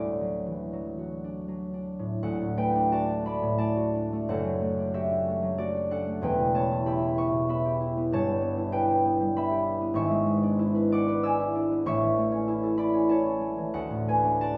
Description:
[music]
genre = classical, solo harp piece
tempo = 75-100 BPM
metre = 3/4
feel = rubato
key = D major, A major from 10.0 s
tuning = A4 = 441 Hz
[part]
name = concert harp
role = solo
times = 0.0-14.6 s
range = E1 to E6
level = -27 LUFS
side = equal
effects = none
[sound]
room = moderate recital hall reverb, RT60 1.6 s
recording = none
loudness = -27 LUFS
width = mono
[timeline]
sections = 0.0-2.2 A section; 2.2-14.6 B section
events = none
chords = 0.0 D; 4.3 D/F#; 6.2 Em; 8.1 Em/G; 10.0 E7/G#; 11.9 A; 13.8 D

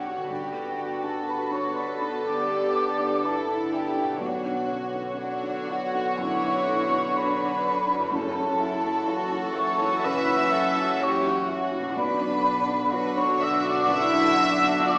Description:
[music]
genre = cinematic, emotional film score for orchestra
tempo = 62 BPM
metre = 4/4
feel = rubato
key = B minor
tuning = A4 = 440 Hz
[part]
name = warm studio violin section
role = melody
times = 0.0-15.0 s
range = F#4 to A4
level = -34 LUFS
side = equal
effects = none
[part]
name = mellow hollow small flute group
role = second line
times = 0.0-15.0 s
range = F#5 to E6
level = -29 LUFS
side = equal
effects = none
[part]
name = warm studio violin section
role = second line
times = 0.0-15.0 s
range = F#4 to E5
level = -34 LUFS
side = equal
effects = none
[part]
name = felt-muted upright piano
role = accompaniment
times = 0.0-15.0 s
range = B1 to E5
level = -36 LUFS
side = equal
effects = none
[part]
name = warm studio viola section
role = accompaniment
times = 0.0-15.0 s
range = D3 to C#5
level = -37 LUFS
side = equal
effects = none
[part]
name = dark French horn section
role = sustained chords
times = 0.0-15.0 s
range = D3 to E4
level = -38 LUFS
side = equal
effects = none
[part]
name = concert harp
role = arpeggios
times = 0.0-15.0 s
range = F#2 to F#5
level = -42 LUFS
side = equal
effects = none
[part]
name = dark studio cello section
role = bass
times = 0.0-15.0 s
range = C#4 to B4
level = -34 LUFS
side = equal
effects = none
[part]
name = warm studio double bass section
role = bass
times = 0.0-15.0 s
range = F#1 to B1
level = -43 LUFS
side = equal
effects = none
[part]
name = timpani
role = percussion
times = 8.1-9.5 s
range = F#2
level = -45 LUFS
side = equal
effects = none
[sound]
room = wet recital hall reverb, RT60 1.4 s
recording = recorded in a church or concert hall, small speaker sound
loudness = -25 LUFS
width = mono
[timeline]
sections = 0.0-15.0 A section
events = none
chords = 0.3 Gadd9; 4.2 Bmadd9; 8.1 F#m7; 12.0 Bmadd9

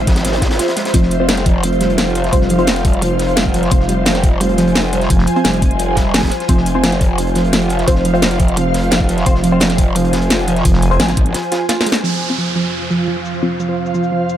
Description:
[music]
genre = dark technical drum and bass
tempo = 173 BPM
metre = 4/4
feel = straight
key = F harmonic minor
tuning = A4 = 440 Hz
[part]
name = growl bass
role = bass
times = 0.0-11.3 s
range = F1 to Ab1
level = -18 LUFS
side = equal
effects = chorus, tube saturation
[part]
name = ethereal airy pad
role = texture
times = 0.0-14.4 s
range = F4 to Ab5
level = -20 LUFS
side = equal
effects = ensemble chorus, built-in reverb, tremolo, sidechain pumping
[part]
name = soft round pluck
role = arpeggios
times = 0.1-14.2 s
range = F3 to F4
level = -19 LUFS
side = right 2 dB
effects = chorus, sidechain pumping, tape echo
[part]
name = crunchy breakbeat drum kit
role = drums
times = 0.1-12.0 s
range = hi-hat, snare drum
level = -27 LUFS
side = equal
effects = high-pass filter on hats, high-pass filter on snare, high-pass filter on room
[part]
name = drum and bass drum kit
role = drums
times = 0.1-14.4 s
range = crash cymbal, hi-hat, shaker, snare drum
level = -18 LUFS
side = equal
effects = low-pass filter on hats, low-pass filter on snare, low-pass filter on cymbals, low-pass filter on perc, low-pass filter on room
[part]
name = electronic kick drum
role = drums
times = 0.1-11.2 s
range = none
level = -14 LUFS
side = equal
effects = none
[part]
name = filtered dub chord stab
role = stabs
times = 0.9-13.8 s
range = C4 to C5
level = -22 LUFS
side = left 2 dB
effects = phaser, vintage 12-bit sampler grit, tape echo
[part]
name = growling FM bass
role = bass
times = 5.1-5.3, 10.7-11.0 s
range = F1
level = -15 LUFS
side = equal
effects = none
[part]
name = dark analog pad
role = sustained chords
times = 12.3-14.4 s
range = F3 to F5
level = -24 LUFS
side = right 3 dB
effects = chorus, sidechain pumping
[part]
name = downlifter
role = sound effects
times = 12.0-14.4 s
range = none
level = -24 LUFS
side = right 3 dB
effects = none
[sound]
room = light reverb, digital ambience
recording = none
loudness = -12 LUFS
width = side -11 dB against mid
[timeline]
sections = 0.0-12.0 A section; 12.0-14.4 B section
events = filter sweep on synth pluck 0.0-12.0, 12.0-14.4; filter sweep on synth stab 0.0-12.0; break 11.3-12.0; drum fill 11.7-12.0; band accent 11.9; filter sweep on drum 12.0-14.4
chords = 0.0 F5

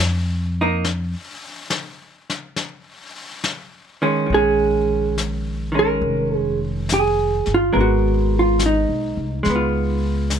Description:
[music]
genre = jazz ballad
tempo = 70 BPM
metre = 4/4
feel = swing 69% on 8ths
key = Bb minor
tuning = A4 = 441 Hz
[part]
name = upright bass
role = bass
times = 0.0-10.4 s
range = F1 to F2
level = -22 LUFS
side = left 1 dB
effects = none
[part]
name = vintage hollow-body jazz guitar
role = accompaniment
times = 0.6-10.4 s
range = Eb3 to Bb4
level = -22 LUFS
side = right 1 dB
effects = none
[part]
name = vintage brush drum kit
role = drums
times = 0.8-10.4 s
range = brushed snare drum, hi-hat, snare drum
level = -27 LUFS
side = left 4 dB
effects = none
[part]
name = hollow-body jazz guitar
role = melody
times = 4.3-10.0 s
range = Eb4 to Bb4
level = -19 LUFS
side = right 3 dB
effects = none
[sound]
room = light reverb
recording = close, detailed microphones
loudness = -18 LUFS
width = side -8 dB against mid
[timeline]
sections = 0.0-4.3 A section; 4.3-10.4 B section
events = upright bass solo 0.0-4.3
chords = 0.0 N.C.; 2.6 Eb7sus4; 4.3 Bbm7; 7.7 Abmadd9; 9.4 Db7

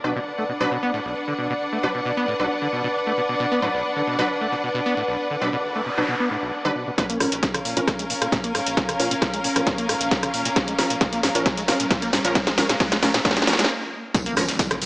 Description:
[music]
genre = driving peak-time techno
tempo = 134 BPM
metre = 4/4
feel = straight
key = unclear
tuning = A4 = 439 Hz
[part]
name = acid bass, saw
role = riff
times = 0.0-14.9 s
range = Bb1 to B3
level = -29 LUFS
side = equal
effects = lush chorus, sidechain pumping, digital delay
[part]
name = rave stab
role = stabs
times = 0.0-14.4 s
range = F3 to B4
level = -27 LUFS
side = equal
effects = chorus, built-in reverb, sidechain pumping, digital delay
[part]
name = rich studio string section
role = texture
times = 0.0-13.7 s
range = Db4 to F#5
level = -25 LUFS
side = equal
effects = sidechain pumping
[part]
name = noise sweep, riser and impact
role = sound effects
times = 5.4-14.9 s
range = none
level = -31 LUFS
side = equal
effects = none
[part]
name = electronic kick drum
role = drums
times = 7.0-14.7 s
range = none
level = -25 LUFS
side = equal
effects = none
[part]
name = techno drum kit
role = drums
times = 7.0-14.9 s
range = hi-hat, rim click, snare drum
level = -22 LUFS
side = equal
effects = high-pass filter on snare, low-pass filter on snare, high-pass filter on hats, low-pass filter on hats, high-pass filter on room, low-pass filter on room
[part]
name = tambourine and snare drum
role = drums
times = 14.1-14.9 s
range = none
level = -29 LUFS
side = equal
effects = high-pass filter on snare, sidechain pumping on perc, high-pass filter on perc, high-pass filter on room
[part]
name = saturated sub bass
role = bass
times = 14.4-14.9 s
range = Bb1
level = -35 LUFS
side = equal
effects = overdrive, sidechain pumping, low-pass filter
[sound]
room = moderate lush hall reverb, RT60 1.9 s, small room ambience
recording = small speaker sound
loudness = -20 LUFS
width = side -23 dB against mid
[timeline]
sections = 0.0-7.0 A section; 7.0-14.1 B section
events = noise sweep 5.4-7.0; build-up 7.0-14.1; drum fill 7.0-13.7; filter sweep on acid bass 7.0-14.1; filter sweep on synth stab 7.0-14.1; riser 9.9-13.7; stop 13.7-14.1; impact 14.1-14.9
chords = 0.0 Bm; 7.0 Bbm

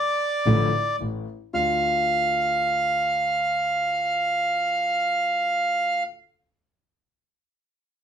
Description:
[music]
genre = tango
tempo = free time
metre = none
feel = none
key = D minor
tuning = A4 = 440 Hz
[part]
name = bandoneon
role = melody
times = 0.0-6.0 s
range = D5 to F5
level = -21 LUFS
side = right 2 dB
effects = none
[part]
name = warm concert grand piano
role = accompaniment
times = 0.5-6.0 s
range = A1 to F4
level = -30 LUFS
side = left 5 dB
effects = none
[part]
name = dark double bass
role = bass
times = 0.5-1.8 s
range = A1 to D2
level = -26 LUFS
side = right 2 dB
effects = none
[sound]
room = moderate studio reverb, RT60 0.5 s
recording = none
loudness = -21 LUFS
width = side -8 dB against mid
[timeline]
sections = 0.0-1.5 A section; 1.5-5.8 B section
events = none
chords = 0.0 Dmadd9; 1.0 N.C.; 1.5 Dm

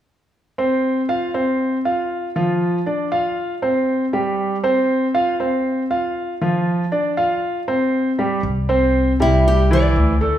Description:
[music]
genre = latin, Cuban son and guajira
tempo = 118 BPM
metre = 4/4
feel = straight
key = unclear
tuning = A4 = 440 Hz
[part]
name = warm grand piano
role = arpeggios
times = 0.6-10.4 s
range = E3 to F5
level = -18 LUFS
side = right 1 dB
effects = none
[part]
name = upright bass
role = bass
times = 8.4-10.4 s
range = C2 to D2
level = -17 LUFS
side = equal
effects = none
[part]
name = nylon-string guitar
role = melody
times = 9.2-10.2 s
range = E4 to D5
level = -19 LUFS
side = equal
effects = none
[sound]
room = wet large studio reverb, RT60 1.3 s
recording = band playing live in one room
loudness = -17 LUFS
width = side -11 dB against mid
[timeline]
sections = 0.3-8.4 A section; 8.4-10.4 B section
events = none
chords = 0.3 F5; 2.4 Dm/F; 3.4 F5; 6.4 Dm/F; 7.4 F5; 8.4 Cadd9

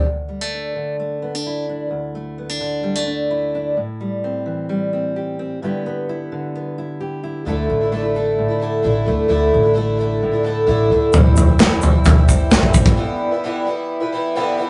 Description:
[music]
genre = indie folk with a building arrangement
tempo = 130 BPM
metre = 4/4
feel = straight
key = unclear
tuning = A4 = 440 Hz
[part]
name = fingerpicked steel-string acoustic guitar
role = accompaniment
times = 0.0-13.0 s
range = D2 to A4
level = -26 LUFS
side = equal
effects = none
[part]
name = picked twelve-string acoustic guitar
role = accompaniment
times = 0.0-0.1, 7.5-14.7 s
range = G2 to E4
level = -21 LUFS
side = equal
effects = none
[part]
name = upright bass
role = bass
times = 7.5-12.9 s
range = A1 to E2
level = -24 LUFS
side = equal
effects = none
[part]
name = natural country drum kit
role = drums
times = 11.1-13.0 s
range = kick drum, snare drum, toms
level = -15 LUFS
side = equal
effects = none
[part]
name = tube shaker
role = percussion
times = 11.1-12.9 s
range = none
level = -33 LUFS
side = equal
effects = none
[part]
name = group handclap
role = percussion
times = 11.6-12.6 s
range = none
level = -28 LUFS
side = equal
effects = none
[sound]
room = moderate studio reverb, RT60 0.5 s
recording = rough rehearsal-room recording, nothing above 10.9 kHz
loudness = -19 LUFS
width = mono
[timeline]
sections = 0.0-7.5 A section; 7.5-14.7 B section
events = build-up 7.5-14.7; drum fill 11.1-13.0; break 13.0-14.7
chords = 0.0 Dsus2; 3.8 Am7; 5.6 G6; 7.5 Dsus2; 11.1 Am7; 13.0 G6

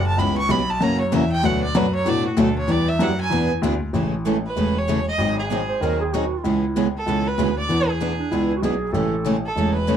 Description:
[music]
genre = acoustic string swing (jazz manouche)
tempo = 192 BPM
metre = 4/4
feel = swing 59% on 8ths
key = A major from 3.9 s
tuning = A4 = 440 Hz
[part]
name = clear violin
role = melody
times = 0.0-10.0 s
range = F#4 to C#6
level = -25 LUFS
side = right 2 dB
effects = none
[part]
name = warm baby grand piano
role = bass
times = 0.0-10.0 s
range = E1 to A2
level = -22 LUFS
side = left 1 dB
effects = none
[part]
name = picked steel-string acoustic guitar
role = accompaniment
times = 0.2-10.0 s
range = B2 to G#4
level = -24 LUFS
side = left 4 dB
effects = none
[part]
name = picked steel-string acoustic guitar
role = accompaniment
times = 0.2-10.0 s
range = B2 to B4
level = -27 LUFS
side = right 8 dB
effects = none
[part]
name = breathy clarinet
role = second line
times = 5.7-9.3 s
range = D4 to B#4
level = -25 LUFS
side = right 5 dB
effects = none
[sound]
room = moderate club reverb, RT60 0.5 s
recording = dark, warm production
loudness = -19 LUFS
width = side -9 dB against mid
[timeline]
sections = 0.0-3.9 A section; 3.9-10.0 B section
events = violin solo 0.0-3.9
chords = 0.2 C#m7b5; 0.8 F#7; 1.4 Bm7; 2.7 Em7; 3.3 E7; 3.9 Amaj7; 5.2 G#7; 6.4 C#m7; 7.7 E7; 8.9 Amaj7

